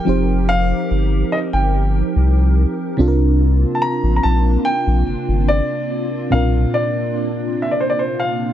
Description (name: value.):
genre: contemporary R&B.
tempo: 72 BPM.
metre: 4/4.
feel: straight.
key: unclear.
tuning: A4 = 443 Hz.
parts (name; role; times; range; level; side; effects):
warm grand piano; melody; 0.0-8.5 s; C5 to Bb5; -22 LUFS; equal; digital delay.
mellow FM electric piano; accompaniment; 0.0-8.5 s; Bb2 to C5; -21 LUFS; right 1 dB; chorus, phaser.
hollow soft pad; sustained chords; 0.0-8.5 s; F3 to Bb4; -25 LUFS; equal; ensemble chorus.
round analog bass; bass; 0.1-6.7 s; F1 to C2; -16 LUFS; equal; none.
room: digital ambience.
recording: none.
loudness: -15 LUFS.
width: side -11 dB against mid.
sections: 0.0-8.5 A section.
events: none.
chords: 0.0 F9sus4; 3.0 C9sus4.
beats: | 0.07 0.90 1.74 2.57 | 3.40 4.24 5.07 5.90 | 6.74 7.57 8.40.